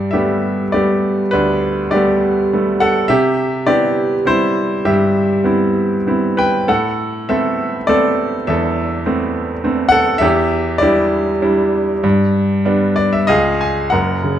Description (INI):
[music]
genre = classical, lyrical solo piano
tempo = 100 BPM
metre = 3/4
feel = rubato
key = G major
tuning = A4 = 441 Hz
[part]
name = bright baby grand piano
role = solo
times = 0.0-14.4 s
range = F#1 to G#5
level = -13 LUFS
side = equal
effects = none
[sound]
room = moderate recital hall reverb, RT60 1.5 s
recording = dark, warm production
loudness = -13 LUFS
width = side -10 dB against mid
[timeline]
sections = 0.0-13.9 A section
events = grand piano fill 12.7-13.9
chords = 0.0 Gadd9; 3.1 Cmaj7; 6.7 Amadd9; 10.2 Em7; 12.0 G; 13.3 C#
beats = 0.13 0.73 | 1.33 1.93 2.51 | 3.09 3.67 4.26 | 4.86 5.46 6.08 | 6.69 7.29 7.89 | 8.48 9.06 9.64 | 10.23 10.83 11.43 | 12.04 12.66 13.29 | 13.92